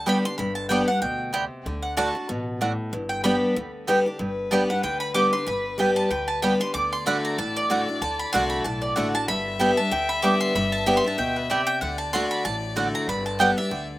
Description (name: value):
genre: bluegrass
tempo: 189 BPM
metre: 4/4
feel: swing 56% on 8ths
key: G major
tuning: A4 = 439 Hz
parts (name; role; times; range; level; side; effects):
- mandolin; melody; 0.0-13.9 s; B4 to D6; -27 LUFS; right 1 dB; slapback echo
- picked steel-string acoustic guitar; accompaniment; 0.0-14.0 s; G2 to G4; -25 LUFS; left 1 dB; none
- upright bass; bass; 0.0-14.0 s; G1 to D2; -36 LUFS; equal; none
- mandolin; stabs; 0.1-13.5 s; A3 to G5; -24 LUFS; right 3 dB; slapback echo
- clear fiddle; second line; 4.2-14.0 s; B4 to E5; -30 LUFS; left 4 dB; slapback echo
room: little or no reverb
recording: recorded outdoors, with no room sound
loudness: -21 LUFS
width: side -16 dB against mid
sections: 0.0-4.2 A section; 4.2-14.0 A section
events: mandolin solo 0.0-14.0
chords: 0.0 G; 1.7 D; 2.9 G; 6.7 D; 9.3 G; 11.8 D; 13.1 G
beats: 0.07 | 0.39 0.71 1.02 1.34 | 1.66 1.98 2.30 2.61 | 2.93 3.25 3.57 3.88 | 4.20 4.52 4.84 5.16 | 5.47 5.79 6.11 6.43 | 6.75 7.06 7.38 7.70 | 8.02 8.33 8.65 8.97 | 9.29 9.60 9.92 10.24 | 10.55 10.87 11.19 11.50 | 11.82 12.14 12.45 12.77 | 13.09 13.40 13.72